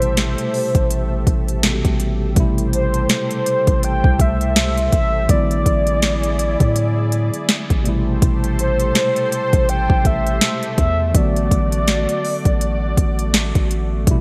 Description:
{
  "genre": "contemporary R&B",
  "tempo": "82 BPM",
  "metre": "4/4",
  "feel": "swing 58% on 16ths",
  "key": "A dorian",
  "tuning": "A4 = 440 Hz",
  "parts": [
    { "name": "mellow horn-like synth lead", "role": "melody", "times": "0.0-13.3 s", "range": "C5 to G5", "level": "-24 LUFS", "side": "equal", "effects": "chorus, digital delay" },
    { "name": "tine electric piano", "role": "accompaniment", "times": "0.0-14.2 s", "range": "B2 to G4", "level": "-26 LUFS", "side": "equal", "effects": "none" },
    { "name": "lush unison pad", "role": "sustained chords", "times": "0.0-14.2 s", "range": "A3 to E5", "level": "-31 LUFS", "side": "equal", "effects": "chorus, sidechain pumping" },
    { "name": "long sustained 808-style bass", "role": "bass", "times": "0.0-14.2 s", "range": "A1 to A2", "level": "-23 LUFS", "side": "equal", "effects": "none" },
    { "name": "smooth R&B drum kit", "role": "drums", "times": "0.0-14.2 s", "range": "hi-hat, kick drum, snare drum", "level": "-20 LUFS", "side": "equal", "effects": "overdrive, gated reverb" }
  ],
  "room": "light reverb",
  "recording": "bright 1980s-style digital production",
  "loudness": "-18 LUFS",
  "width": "mono",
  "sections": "0.0-2.4 A section; 2.4-14.2 A section",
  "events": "none",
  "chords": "0.0 Am9; 5.3 E7/A; 7.9 Am9; 11.1 Bm7/A",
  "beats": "0.17 0.90 1.63 | 2.37 3.10 3.83 4.56 | 5.29 6.02 6.76 7.49 | 8.22 8.95 9.68 10.41 | 11.15 11.88 12.61 13.34 | 14.07"
}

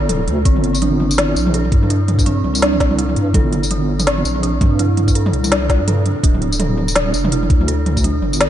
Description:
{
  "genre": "half-time drum and bass",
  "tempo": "166 BPM",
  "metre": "4/4",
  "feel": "swing 59% on 16ths, half-time",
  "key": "unclear",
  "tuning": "A4 = 440 Hz",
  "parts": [
    { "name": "dark detuned synth bell", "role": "arpeggios", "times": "0.0-8.5 s", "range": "C4 to A4", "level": "-21 LUFS", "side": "right 2 dB", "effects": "chorus, phaser, ping-pong delay" },
    { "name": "deep soft wobble bass", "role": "bass", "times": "0.0-8.5 s", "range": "D1 to G2", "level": "-18 LUFS", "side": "equal", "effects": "chorus" },
    { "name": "organic electronic drum kit", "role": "drums", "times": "0.1-8.5 s", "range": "hi-hat, snare drum, tambourine, toms", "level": "-19 LUFS", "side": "equal", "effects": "none" },
    { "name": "electronic kick drum", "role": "drums", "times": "0.5-8.0 s", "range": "none", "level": "-15 LUFS", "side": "equal", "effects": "none" }
  ],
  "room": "moderate cathedral reverb, RT60 6.8 s",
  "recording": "dreamy mix soaked in reverb, nothing above 10.3 kHz",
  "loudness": "-14 LUFS",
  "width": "side -11 dB against mid",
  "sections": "0.0-8.5 A section",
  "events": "none",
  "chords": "0.5 Gm; 6.2 Dmadd9",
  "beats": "0.09 | 0.45 0.81 1.18 1.54 | 1.90 2.26 2.62 2.98 | 3.35 3.71 4.07 4.43 | 4.79 5.15 5.51 5.88 | 6.24 6.60 6.96 7.32 | 7.68 8.04 8.41"
}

